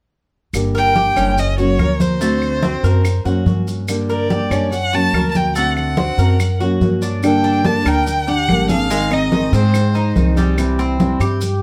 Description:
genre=latin, Cuban son and guajira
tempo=143 BPM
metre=4/4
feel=straight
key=G harmonic minor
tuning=A4 = 440 Hz
part: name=fingerpicked steel-string acoustic guitar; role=accompaniment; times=0.5-11.5 s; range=C3 to A4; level=-24 LUFS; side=equal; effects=none
part: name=upright bass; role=bass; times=0.5-11.6 s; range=F#1 to Ab2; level=-21 LUFS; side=equal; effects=none
part: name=claves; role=percussion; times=0.5-11.4 s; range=none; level=-32 LUFS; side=equal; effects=none
part: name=congas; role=percussion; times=0.5-11.6 s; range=none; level=-23 LUFS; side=equal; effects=none
part: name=maracas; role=percussion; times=0.5-11.6 s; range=none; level=-37 LUFS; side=equal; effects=none
part: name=Cuban tres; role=arpeggios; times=0.7-11.6 s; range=G3 to Bb4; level=-26 LUFS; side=equal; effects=none
part: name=warm violin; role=melody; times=0.8-10.3 s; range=C5 to A5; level=-22 LUFS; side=equal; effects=none
part: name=nylon-string guitar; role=second line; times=7.2-10.3 s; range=Ab3 to D4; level=-24 LUFS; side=equal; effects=none
room=moderate studio ambience, RT60 0.5 s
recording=none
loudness=-16 LUFS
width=mono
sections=0.5-7.2 A section; 7.2-11.6 B section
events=none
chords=0.5 Gm; 1.4 F#; 2.2 D7; 3.0 F#; 3.9 Gm; 4.7 F#; 5.6 D7; 6.4 F#; 7.2 Gmadd9; 8.9 Ab; 10.6 C

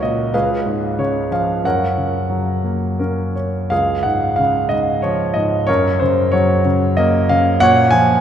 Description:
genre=classical, lyrical solo piano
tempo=81-96 BPM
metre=3/4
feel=rubato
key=F# major, Db major from 3.7 s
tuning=A4 = 440 Hz
part: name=clear concert grand piano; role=solo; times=0.0-8.2 s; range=C#2 to Ab5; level=-14 LUFS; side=equal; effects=none
room=wet church reverb, RT60 3.6 s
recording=recorded in a church or concert hall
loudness=-14 LUFS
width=side -9 dB against mid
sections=0.0-3.7 A section; 3.7-8.2 B section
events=none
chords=0.3 C#7; 1.6 F#; 3.7 Db; 5.7 Gb; 7.6 Bbm

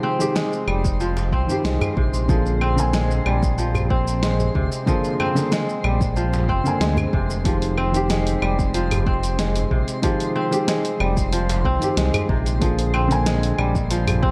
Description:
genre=organic downtempo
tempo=93 BPM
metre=4/4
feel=straight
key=F dorian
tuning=A4 = 440 Hz
part: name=felt-muted upright piano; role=accompaniment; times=0.0-14.3 s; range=D3 to Ab5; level=-28 LUFS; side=equal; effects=sidechain pumping, digital delay, shimmer reverb
part: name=kora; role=arpeggios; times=0.0-14.3 s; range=C3 to C4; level=-27 LUFS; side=equal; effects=vintage 12-bit sampler grit, digital delay, shimmer reverb
part: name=twinkling granular texture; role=texture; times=0.0-14.3 s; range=C4 to C5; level=-37 LUFS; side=equal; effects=built-in reverb, shimmer reverb
part: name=deep house drum kit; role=drums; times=0.2-14.2 s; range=claves, hi-hat, shaker, snare drum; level=-30 LUFS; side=equal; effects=none
part: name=smooth synth bass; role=bass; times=0.7-14.3 s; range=F1 to D2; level=-25 LUFS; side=equal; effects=sidechain pumping
part: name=electronic kick drum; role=drums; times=0.8-14.3 s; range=none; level=-26 LUFS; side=equal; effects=none
part: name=djembe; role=percussion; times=1.2-14.2 s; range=none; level=-32 LUFS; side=equal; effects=none
room=light reverb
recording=dark, warm production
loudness=-21 LUFS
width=mono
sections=0.0-14.3 A section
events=none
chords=0.0 Fm9; 2.3 Bb7; 7.5 Fm9; 12.6 Bb7

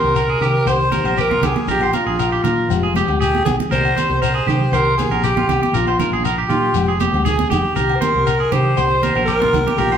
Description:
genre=highlife guitar band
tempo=118 BPM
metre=4/4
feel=straight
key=C minor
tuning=A4 = 440 Hz
part: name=raspy alto saxophone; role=melody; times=0.0-10.0 s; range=F4 to C5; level=-20 LUFS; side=equal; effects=none
part: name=fingerpicked steel-string acoustic guitar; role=accompaniment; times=0.0-9.9 s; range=Eb3 to G4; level=-26 LUFS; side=left 5 dB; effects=none
part: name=electric guitar at the edge of break-up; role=arpeggios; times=0.0-10.0 s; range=F4 to C5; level=-20 LUFS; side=right 3 dB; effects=none
part: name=hollow-body short-scale fingered electric bass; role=bass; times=0.0-10.0 s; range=F1 to C3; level=-21 LUFS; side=equal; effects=none
part: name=agogo bells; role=percussion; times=0.2-10.0 s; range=none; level=-28 LUFS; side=left 6 dB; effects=none
part: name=shekere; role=percussion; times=0.2-9.9 s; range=none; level=-28 LUFS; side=left 6 dB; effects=none
part: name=congas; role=percussion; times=0.9-9.8 s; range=none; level=-25 LUFS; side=right 3 dB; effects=none
room=wet large studio reverb, RT60 1.3 s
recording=band playing live in one room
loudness=-15 LUFS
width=side -8 dB against mid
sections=0.0-10.0 A section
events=none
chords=0.0 Cm7; 1.7 Bb; 2.7 Fmadd9; 3.7 Cm7; 5.7 Bb; 6.7 Fmadd9; 7.8 Cm7

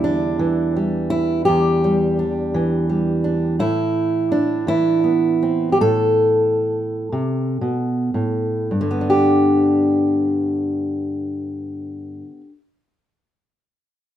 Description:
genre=folk, solo fingerstyle acoustic guitar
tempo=34-57 BPM (dotted quarters)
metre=6/8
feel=straight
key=G major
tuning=A4 = 440 Hz
part: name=fingerpicked steel-string acoustic guitar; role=solo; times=0.0-12.5 s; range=E2 to A4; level=-17 LUFS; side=equal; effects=none
room=wet studio reverb, RT60 0.6 s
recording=rough home demo mix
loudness=-17 LUFS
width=side -11 dB against mid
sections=0.0-8.7 A section; 8.7-14.2 B section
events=slowing down 3.6-8.7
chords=0.0 Em7; 3.6 Amadd9; 8.7 G

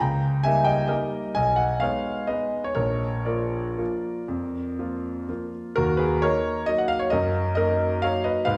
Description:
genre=classical, piano waltz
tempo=114-142 BPM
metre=3/4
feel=rubato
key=Eb minor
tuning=A4 = 440 Hz
part: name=clear concert grand piano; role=solo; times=0.0-8.6 s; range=Bb1 to Bb5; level=-25 LUFS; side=equal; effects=none
room=wet recital hall reverb, RT60 1.5 s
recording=recorded in a church or concert hall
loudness=-25 LUFS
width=mono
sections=0.0-5.8 A section; 5.8-8.6 B section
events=none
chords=0.0 Eb7/Db; 1.4 Abm/Cb; 2.8 Bb; 5.8 Ebm; 7.1 Ebm/Gb

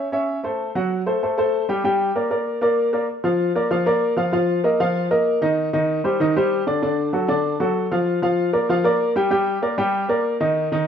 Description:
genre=latin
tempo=193 BPM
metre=4/4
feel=straight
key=G minor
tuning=A4 = 440 Hz
part: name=clear upright piano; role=solo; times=0.0-10.9 s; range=D3 to G5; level=-18 LUFS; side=equal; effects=none
room=moderate large studio reverb, RT60 1.0 s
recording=band playing live in one room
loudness=-18 LUFS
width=side -8 dB against mid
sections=0.0-3.1 A section; 3.1-10.9 B section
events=none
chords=0.0 A; 0.6 F#dim; 1.8 Gm; 3.1 Bb; 4.3 Ebsus2; 5.6 Cmadd9; 6.8 D; 8.1 Bb; 9.3 Gm

